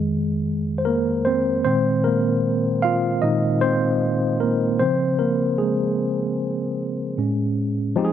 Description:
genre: R&B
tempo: 76 BPM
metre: 4/4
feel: swing 54% on 16ths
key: unclear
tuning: A4 = 440 Hz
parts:
  - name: mellow tine electric piano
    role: solo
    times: 0.0-8.1 s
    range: F2 to F5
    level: -19 LUFS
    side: equal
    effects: medium stereo tremolo
room: light reverb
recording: none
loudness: -19 LUFS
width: side -10 dB against mid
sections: 0.0-8.0 A section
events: tine electric piano solo 0.0-8.0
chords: 0.0 Fm7; 1.6 Bb7sus4; 4.8 Dbmaj7; 7.2 Amaj7

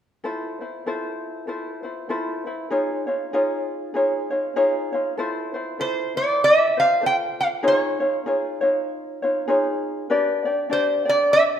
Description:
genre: Hawaiian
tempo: 98 BPM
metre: 4/4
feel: swing 59% on 8ths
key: unclear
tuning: A4 = 435 Hz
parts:
  - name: ukulele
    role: accompaniment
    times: 0.2-11.6 s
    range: D4 to D5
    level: -23 LUFS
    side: left 1 dB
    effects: none
  - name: lap resonator guitar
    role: melody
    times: 5.8-11.4 s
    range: C5 to G5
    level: -18 LUFS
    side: right 1 dB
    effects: none
room: wet recital hall reverb, RT60 1.5 s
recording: minimal, uncompressed stereo recording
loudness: -20 LUFS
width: side -9 dB against mid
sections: 0.2-5.2 A section; 5.2-11.6 B section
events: none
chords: 0.2 Fmaj7; 2.7 Dbadd9; 5.2 Fmaj7; 7.6 Dbadd9; 10.1 G

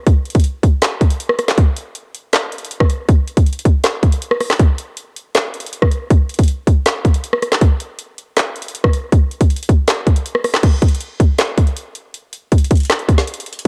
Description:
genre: hip hop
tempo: 159 BPM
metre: 4/4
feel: half-time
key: none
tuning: none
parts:
  - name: trap drum kit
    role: drums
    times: 0.1-13.7 s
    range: crash cymbal, handclaps, hi-hat, kick drum, rim click, snare drum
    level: -15 LUFS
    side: equal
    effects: none
room: light reverb, digital ambience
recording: home recording on cassette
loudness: -16 LUFS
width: mono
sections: 0.0-10.6 A section; 10.6-13.7 B section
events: none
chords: none

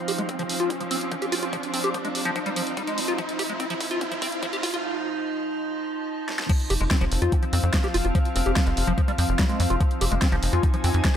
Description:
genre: psychedelic trance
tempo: 145 BPM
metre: 4/4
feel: straight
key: F minor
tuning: A4 = 440 Hz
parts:
  - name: evolving wavetable pad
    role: sustained chords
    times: 0.0-11.2 s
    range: F3 to Eb4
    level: -31 LUFS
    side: right 3 dB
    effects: chorus, built-in reverb, sidechain pumping
  - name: riser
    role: sound effects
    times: 0.0-4.8 s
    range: none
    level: -32 LUFS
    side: right 1 dB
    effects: none
  - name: airy breathy pad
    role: texture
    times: 0.0-11.2 s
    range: F4 to Ab5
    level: -34 LUFS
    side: left 2 dB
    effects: chorus, sidechain pumping
  - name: liquid acid bass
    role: riff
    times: 0.1-11.1 s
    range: F3 to G4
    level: -29 LUFS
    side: left 1 dB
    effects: phaser, auto-pan, cassette tape, sidechain pumping, dub echo
  - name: big-room dance drum kit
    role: drums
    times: 0.1-11.1 s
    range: crash cymbal, hi-hat, snare drum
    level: -29 LUFS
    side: equal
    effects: overdrive
  - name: electronic kick drum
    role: drums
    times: 0.3-11.1 s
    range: none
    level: -23 LUFS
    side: equal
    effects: overdrive, high-pass filter on kick
  - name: tight sequencer bass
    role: bass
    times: 6.7-11.0 s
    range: F1 to F2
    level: -23 LUFS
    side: equal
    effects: tube saturation
room: light reverb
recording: high-pass filter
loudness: -22 LUFS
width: side -9 dB against mid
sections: 0.0-6.5 A section; 6.5-11.2 B section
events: build-up 0.0-6.5; drum fill 0.0-4.8, 6.3; riser 0.0-4.8; filter sweep on acid bass 0.0-6.5; drop 6.5-11.2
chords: 0.0 F5

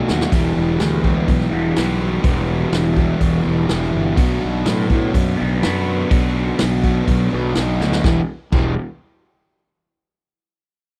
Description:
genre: classic rock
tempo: 124 BPM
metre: 4/4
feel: straight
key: E minor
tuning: A4 = 439 Hz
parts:
  - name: crunchy overdriven guitar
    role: riff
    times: 0.0-8.7 s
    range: E2 to B3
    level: -24 LUFS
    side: equal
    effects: phaser
  - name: sludgy distorted guitar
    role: riff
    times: 0.0-8.7 s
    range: E2 to G4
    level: -25 LUFS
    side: equal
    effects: overdrive
  - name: fuzz fingered electric bass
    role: bass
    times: 0.1-8.8 s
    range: E1 to A2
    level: -23 LUFS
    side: equal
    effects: overdrive
  - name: vintage drum kit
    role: drums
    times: 0.1-8.6 s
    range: crash cymbal, hi-hat, kick drum, snare drum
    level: -21 LUFS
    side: equal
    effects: none
room: small room ambience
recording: dry, close 1970s-style studio recording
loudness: -18 LUFS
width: mono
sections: 0.3-8.0 A section; 8.0-10.0 B section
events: drum fill 0.0-0.3, 7.8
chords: 0.3 Em; 4.2 Bm; 8.0 Em

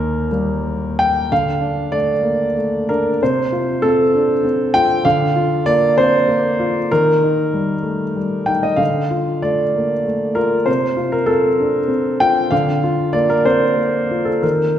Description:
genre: neoclassical minimalist piano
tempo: 64 BPM (dotted quarters)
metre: 6/8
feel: rubato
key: Bb major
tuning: A4 = 439 Hz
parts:
  - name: warm concert grand piano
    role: solo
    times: 0.0-14.8 s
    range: Eb2 to G5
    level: -15 LUFS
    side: equal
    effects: none
room: wet concert hall reverb, RT60 1.9 s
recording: recorded in a church or concert hall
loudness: -15 LUFS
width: side -10 dB against mid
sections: 0.0-1.3 A section; 1.3-14.8 B section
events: none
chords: 0.0 Eb; 1.3 Dm; 3.2 F/C; 5.0 Bb/D; 6.9 Eb; 8.8 Dm; 10.7 F/C; 12.5 Bb/D

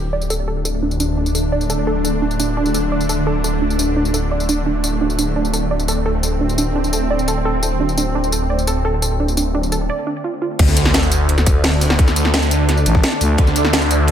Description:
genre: dark technical drum and bass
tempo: 172 BPM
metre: 4/4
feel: straight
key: unclear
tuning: A4 = 440 Hz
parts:
  - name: swarming drone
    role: sustained chords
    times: 0.0-14.1 s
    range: D3 to D4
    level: -22 LUFS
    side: right 1 dB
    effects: built-in reverb, sidechain pumping
  - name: phased detuned saw bass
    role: bass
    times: 0.0-14.1 s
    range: D1 to D2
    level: -19 LUFS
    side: equal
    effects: phaser, tube saturation, sidechain pumping
  - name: warbly dusty pluck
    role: arpeggios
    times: 0.1-10.5 s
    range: D4 to D5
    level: -22 LUFS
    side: right 4 dB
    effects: chorus, sidechain pumping, dub echo
  - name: drum and bass drum kit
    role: drums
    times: 0.2-14.1 s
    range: crash cymbal, hi-hat, snare drum, tambourine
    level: -21 LUFS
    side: equal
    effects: overdrive, studio ambience
  - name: crunchy breakbeat drum kit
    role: drums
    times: 10.6-14.1 s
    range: hi-hat, ride cymbal, snare drum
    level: -28 LUFS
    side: equal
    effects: none
  - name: electronic kick drum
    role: drums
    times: 10.6-13.5 s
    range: none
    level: -14 LUFS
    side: equal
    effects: studio ambience
  - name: sub drop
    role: sound effects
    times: 10.6-12.0 s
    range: none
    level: -22 LUFS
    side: equal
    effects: none
  - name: growling FM bass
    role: bass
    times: 12.9-13.4 s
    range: A1 to D2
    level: -15 LUFS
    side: equal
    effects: none
room: light reverb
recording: none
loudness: -15 LUFS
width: side -9 dB against mid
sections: 0.0-10.6 A section; 10.6-14.1 B section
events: filter sweep on synth arpeggio sound 0.0-10.6; break 9.9-10.6; drop 10.6-14.1; impact 10.6-12.0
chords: 0.0 D5

